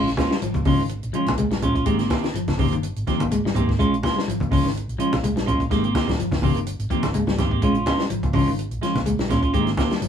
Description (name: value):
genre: afrobeat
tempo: 125 BPM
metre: 4/4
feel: swing 55% on 16ths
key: Bb dorian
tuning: A4 = 440 Hz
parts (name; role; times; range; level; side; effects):
- semi-hollow electric guitar; arpeggios; 0.0-10.1 s; Db3 to Ab3; -25 LUFS; left 4 dB; none
- clean electric guitar; stabs; 0.0-9.9 s; Eb3 to G4; -24 LUFS; right 3 dB; none
- fingered electric bass with an envelope filter; bass; 0.0-10.1 s; G1 to Bb2; -27 LUFS; equal; none
- compact cocktail drum kit; drums; 0.1-10.1 s; hi-hat, kick drum, snare drum; -27 LUFS; equal; none
- congas; percussion; 0.2-10.1 s; none; -26 LUFS; equal; none
room: moderate studio ambience, RT60 0.5 s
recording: band playing live in one room, small room ambience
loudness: -19 LUFS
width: side -8 dB against mid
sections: 0.0-10.1 A section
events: none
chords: 0.0 Bbm7; 1.9 Abmaj9; 3.8 Bbm7; 5.7 Abmaj9; 7.6 Bbm7; 9.5 Abmaj9